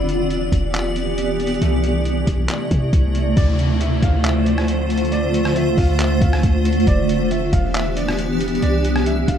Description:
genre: hip hop, atmospheric cloud-rap.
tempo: 137 BPM.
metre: 4/4.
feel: half-time.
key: D dorian.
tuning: A4 = 440 Hz.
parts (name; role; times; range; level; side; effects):
granular cloud pad; sustained chords; 0.0-9.4 s; C3 to D5; -19 LUFS; equal; built-in reverb, sidechain pumping.
clean 808-style bass; bass; 0.0-9.4 s; E1 to C3; -21 LUFS; equal; none.
kora; texture; 0.0-3.6 s; G3 to D5; -40 LUFS; right 1 dB; none.
trip hop sampler-style drum kit; drums; 0.1-9.4 s; handclaps, hi-hat, kick drum, rim click; -22 LUFS; equal; none.
felt-muted upright piano; melody; 3.4-9.4 s; D5 to F5; -28 LUFS; equal; tape echo.
downlifter; sound effects; 3.4-6.9 s; none; -34 LUFS; left 1 dB; none.
room: digital ambience.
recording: rough home demo mix.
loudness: -16 LUFS.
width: side -9 dB against mid.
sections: 0.0-3.4 A section; 3.4-9.4 B section.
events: none.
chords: 0.0 Em7; 1.6 C69; 3.4 Dm7; 6.9 Em7; 8.6 C69.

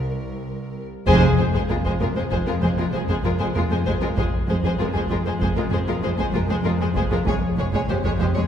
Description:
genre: cinematic, suspense film score.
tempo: 97 BPM.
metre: 5/4.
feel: straight.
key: F minor.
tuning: A4 = 440 Hz.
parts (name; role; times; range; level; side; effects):
rich studio violin section; melody; 0.0-8.4 s; Bb4 to Db5; -30 LUFS; left 3 dB; none.
rich studio cello section; bass; 0.0-8.4 s; C2 to F2; -26 LUFS; right 1 dB; none.
warm studio double bass section; bass; 0.0-8.3 s; F1 to C2; -27 LUFS; right 1 dB; none.
warm studio violin section; second line; 1.1-8.4 s; F4 to Ab4; -29 LUFS; left 4 dB; none.
warm studio viola section; accompaniment; 1.1-8.4 s; Ab3; -27 LUFS; right 1 dB; none.
clear studio cello section; riff; 1.1-8.4 s; F2 to F3; -27 LUFS; equal; none.
taiko ensemble; drums; 1.1-8.5 s; none; -29 LUFS; equal; none.
timpani; percussion; 1.1-2.0 s; F2; -28 LUFS; left 2 dB; none.
room: wet scoring stage reverb, RT60 1.9 s.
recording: heard from further back in the room.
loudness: -19 LUFS.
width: side -9 dB against mid.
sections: 0.0-1.1 A section; 1.1-8.5 B section.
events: band accent 1.1-1.7.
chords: 0.0 Bbsus2/C; 1.1 Fm.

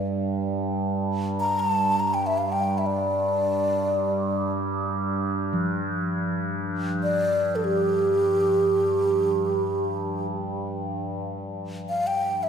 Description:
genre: world meditative, free-time meditation music.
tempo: free time.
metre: none.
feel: none.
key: unclear.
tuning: A4 = 440 Hz.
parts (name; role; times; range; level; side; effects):
breathy mellow low xiao; melody; 0.0-12.5 s; G4 to Bb5; -24 LUFS; equal; diffuse ambient delay.
overtone-sweeping drone; drone; 0.0-12.5 s; G2; -28 LUFS; right 1 dB; chorus, built-in reverb.
quartz singing bowl; texture; 0.0-11.4 s; F3 to G3; -32 LUFS; right 2 dB; none.
room: wet church reverb, RT60 2.9 s.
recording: none.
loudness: -22 LUFS.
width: side -7 dB against mid.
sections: 0.0-10.9 A section; 10.9-12.5 A section.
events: none.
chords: none.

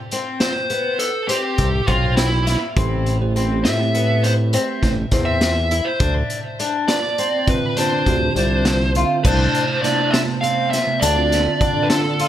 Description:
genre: progressive instrumental, band music in an uneven meter.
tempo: 204 BPM (eighths).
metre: 11/8.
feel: straight.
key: D dorian.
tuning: A4 = 440 Hz.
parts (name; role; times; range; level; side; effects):
fingerpicked twelve-string acoustic guitar; arpeggios; 0.1-12.3 s; B3 to F4; -24 LUFS; left 4 dB; none.
raw garage drum kit; drums; 0.1-12.3 s; crash cymbal, hi-hat, kick drum, snare drum; -22 LUFS; equal; none.
smooth overdriven lead guitar; melody; 0.4-12.3 s; E4 to F5; -22 LUFS; right 1 dB; tape echo.
fat analog bass; bass; 1.6-12.3 s; A1 to D3; -20 LUFS; equal; none.
bell-like tine electric piano; accompaniment; 2.8-12.2 s; C3 to E5; -25 LUFS; right 6 dB; none.
tube shaker; percussion; 9.3-11.8 s; none; -31 LUFS; left 6 dB; none.
room: light reverb.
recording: none.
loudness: -16 LUFS.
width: side -11 dB against mid.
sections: 0.0-9.2 A section; 9.2-12.3 B section.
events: none.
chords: 0.0 Cmaj7(no3); 2.8 Am7; 6.0 Dm9; 9.2 C6; 11.0 Dm7.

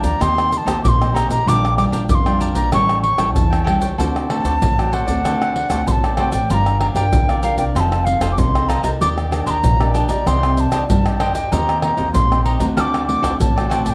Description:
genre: samba and choro.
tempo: 96 BPM.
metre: 4/4.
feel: straight.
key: unclear.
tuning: A4 = 440 Hz.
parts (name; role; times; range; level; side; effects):
bright wooden flute; melody; 0.0-13.9 s; F5 to F6; -22 LUFS; equal; none.
cavaquinho; accompaniment; 0.0-13.9 s; D4 to G5; -30 LUFS; equal; cassette tape.
nylon-string guitar; accompaniment; 0.0-13.9 s; A2 to D5; -27 LUFS; equal; cassette tape.
upright bass; bass; 0.0-13.9 s; F1 to G2; -24 LUFS; equal; none.
tube shaker, surdo, pandeiro and tamborim; percussion; 0.0-13.9 s; none; -22 LUFS; equal; none.
room: moderate spring reverb, RT60 1.5 s, small room ambience.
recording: home recording on cassette.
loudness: -17 LUFS.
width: mono.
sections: 0.0-13.9 A section.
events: none.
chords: 0.2 Eb6; 1.5 Bb6; 2.7 A7; 4.0 D7; 6.5 Gm7; 7.8 F7; 9.0 Ebmaj7; 10.3 Cmadd9; 11.5 Eb6; 12.8 D7.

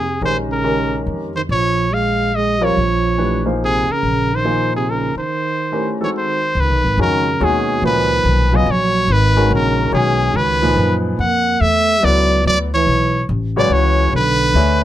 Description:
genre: jazz.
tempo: 142 BPM.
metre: 3/4.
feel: swing 66% on 8ths.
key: Bb dorian.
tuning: A4 = 440 Hz.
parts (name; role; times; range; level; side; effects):
brilliant trumpet; melody; 0.0-14.8 s; G#4 to F#5; -18 LUFS; equal; none.
breathy trombone; second line; 0.0-14.8 s; B2 to A#3; -22 LUFS; right 6 dB; none.
warm concert grand piano; accompaniment; 0.0-14.8 s; A#2 to E5; -20 LUFS; left 2 dB; none.
upright bass; bass; 0.0-14.8 s; G#1 to F#2; -19 LUFS; left 1 dB; none.
room: light reverb.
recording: close, detailed microphones.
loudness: -14 LUFS.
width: side -12 dB against mid.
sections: 0.0-6.6 A section; 6.6-14.8 B section.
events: break 5.3-6.6.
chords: 0.0 Bbm11; 5.3 Ab7b9; 6.6 C#13sus4; 11.6 E13sus4.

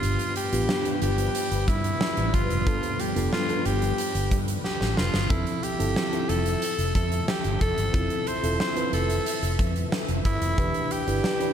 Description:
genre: 1980s-style pop.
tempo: 91 BPM.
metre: 4/4.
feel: straight.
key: unclear.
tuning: A4 = 438 Hz.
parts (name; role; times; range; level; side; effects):
raspy tenor saxophone; melody; 0.0-11.5 s; E4 to C5; -29 LUFS; equal; slapback echo.
mellow FM electric piano; accompaniment; 0.0-11.5 s; G2 to B4; -31 LUFS; right 1 dB; chorus, slapback echo.
soft string machine; sustained chords; 0.0-11.5 s; E3 to E5; -34 LUFS; left 1 dB; phaser, ensemble chorus.
vintage muted fingered electric bass; bass; 0.0-11.2 s; E1 to G2; -27 LUFS; equal; none.
huge arena drum kit; drums; 0.0-11.5 s; hi-hat, kick drum, snare drum; -28 LUFS; equal; none.
room: moderate concert hall reverb, RT60 2.0 s.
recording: big arena sound.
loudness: -23 LUFS.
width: side -9 dB against mid.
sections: 0.0-11.5 A section.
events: drum fill 4.6-5.3.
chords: 0.0 G7; 5.3 Fmaj7; 10.6 Em7.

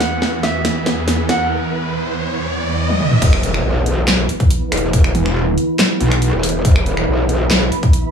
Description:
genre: heavy wobble dubstep.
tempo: 140 BPM.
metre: 4/4.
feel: half-time.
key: unclear.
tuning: A4 = 435 Hz.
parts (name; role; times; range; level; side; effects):
clear grand piano; melody; 0.0-1.5 s; E5 to F#5; -23 LUFS; right 2 dB; digital delay.
supersaw chords; sustained chords; 0.0-8.1 s; E2 to E5; -23 LUFS; right 1 dB; sidechain pumping, low-pass filter.
dubstep drum kit; drums; 0.0-8.0 s; crash cymbal, finger snaps, handclaps, hi-hat, snare drum, toms; -18 LUFS; equal; small room ambience.
riser and impact; sound effects; 0.1-4.9 s; none; -24 LUFS; equal; none.
deep dark ambient pad; texture; 0.2-8.1 s; E4 to B5; -24 LUFS; right 1 dB; chorus, built-in reverb, sidechain pumping.
growl bass; bass; 3.2-7.7 s; E1 to B1; -18 LUFS; equal; chorus, overdrive.
electronic kick drum; drums; 3.2-7.9 s; none; -13 LUFS; equal; small room ambience.
metallic wobble bass; bass; 5.1-6.3 s; E1 to B1; -15 LUFS; equal; distortion, chorus, overdrive.
room: light reverb.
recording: small room ambience.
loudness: -14 LUFS.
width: side -7 dB against mid.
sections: 0.0-3.2 A section; 3.2-8.1 B section.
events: build-up 0.0-3.2; drum fill 0.0-1.5, 2.9-3.2; riser 0.1-3.2; drop 3.2-8.1; impact 3.2-4.9.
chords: 0.0 E5.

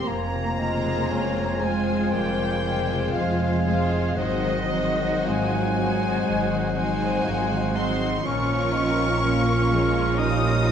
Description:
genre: classical, slow romantic movement for symphony orchestra.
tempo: 53-62 BPM.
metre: 4/4.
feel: rubato.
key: F minor.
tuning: A4 = 440 Hz.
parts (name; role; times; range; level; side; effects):
rich studio violin section; melody; 0.0-10.7 s; Eb5 to Eb6; -32 LUFS; left 4 dB; none.
bright small flute group; second line; 0.0-10.7 s; Eb5 to Eb6; -32 LUFS; equal; none.
rich studio violin section; second line; 0.0-10.7 s; Db4 to C5; -35 LUFS; left 3 dB; none.
mellow bassoon; accompaniment; 0.0-10.7 s; Ab3 to F4; -31 LUFS; equal; none.
rich studio viola section; accompaniment; 0.0-10.7 s; F3 to F4; -31 LUFS; left 1 dB; none.
mellow French horn section; sustained chords; 0.0-10.7 s; F3 to F4; -31 LUFS; left 1 dB; none.
concert harp; arpeggios; 0.0-10.7 s; E2 to G4; -31 LUFS; left 6 dB; none.
warm studio cello section; bass; 0.0-10.7 s; Eb3 to Eb4; -29 LUFS; right 3 dB; none.
mellow oboe; second line; 0.1-10.7 s; F5 to Ab5; -33 LUFS; right 2 dB; none.
warm clarinet; second line; 0.1-10.7 s; Bb4 to C5; -34 LUFS; left 3 dB; none.
rich studio double bass section; bass; 0.1-10.7 s; F1 to Bb1; -28 LUFS; right 4 dB; none.
room: wet scoring stage reverb, RT60 1.6 s.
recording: dark, warm production.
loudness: -21 LUFS.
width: side -8 dB against mid.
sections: 0.0-10.7 A section.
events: none.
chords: 0.1 Fm; 4.2 Ab7; 8.3 Bbm.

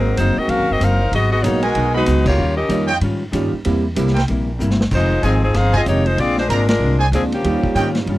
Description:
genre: jazz, big band swing.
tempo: 190 BPM.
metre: 4/4.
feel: swing 61% on 8ths.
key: Eb mixolydian.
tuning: A4 = 444 Hz.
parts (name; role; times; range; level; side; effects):
clear saxophone section; melody; 0.0-2.9, 4.9-7.9 s; F3 to F5; -19 LUFS; left 2 dB; none.
vintage hollow-body jazz guitar; accompaniment; 0.0-8.2 s; F2 to F4; -23 LUFS; left 2 dB; none.
warm concert grand piano; accompaniment; 0.0-8.2 s; F3 to G4; -23 LUFS; right 5 dB; none.
upright bass; bass; 0.0-8.2 s; F1 to Ab2; -19 LUFS; equal; none.
vintage drum kit; drums; 0.2-8.2 s; crash cymbal, hi-hat, kick drum, ride cymbal, snare drum; -26 LUFS; equal; none.
clear trumpet section; stabs; 1.6-7.9 s; Cb4 to Cb6; -20 LUFS; right 3 dB; none.
room: little or no reverb.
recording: dry, close 1970s-style studio recording.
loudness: -15 LUFS.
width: side -16 dB against mid.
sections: 0.0-8.2 A section.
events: band accent 2.2, 6.7; drum fill 4.6-4.9.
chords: 0.0 Ab9; 1.1 Abm7; 2.4 Eb9; 3.6 C7; 4.9 Fm7; 6.2 Bb9; 7.4 Eb9.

